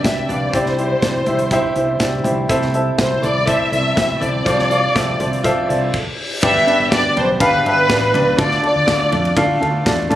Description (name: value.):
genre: piano-driven pop.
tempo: 122 BPM.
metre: 4/4.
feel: straight.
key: unclear.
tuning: A4 = 441 Hz.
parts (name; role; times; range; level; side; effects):
dark symphonic violin section; melody; 0.0-9.3 s; B4 to E5; -18 LUFS; equal; none.
warm baby grand piano; accompaniment; 0.0-10.2 s; G2 to G5; -18 LUFS; equal; none.
fingerpicked steel-string acoustic guitar; riff; 0.0-6.0 s; C3 to B4; -28 LUFS; right 4 dB; none.
mellow fretless electric bass; bass; 0.0-10.2 s; G1 to F2; -24 LUFS; equal; none.
modern studio drum kit; drums; 0.0-10.2 s; crash cymbal, hi-hat, kick drum, ride cymbal, snare drum, toms; -22 LUFS; equal; none.
reverse cymbal; sound effects; 5.7-6.4 s; none; -28 LUFS; left 2 dB; none.
room: moderate large studio reverb, RT60 1.3 s, studio reverb.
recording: recorded on a phone in the room, club reverb, compression.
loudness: -14 LUFS.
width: side -13 dB against mid.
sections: 0.0-6.4 A section; 6.4-10.2 B section.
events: reverse cymbal 5.7-6.4; stop 5.9-6.4.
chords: 0.0 G/C; 0.5 Cadd9; 2.5 Am/C; 4.5 Dm7/C; 6.4 G; 8.4 Dm.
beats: 0.04 | 0.53 1.02 1.51 2.01 | 2.50 2.99 3.48 3.97 | 4.46 4.96 5.45 5.94 | 6.43 6.92 7.41 7.90 | 8.39 8.88 9.37 9.86.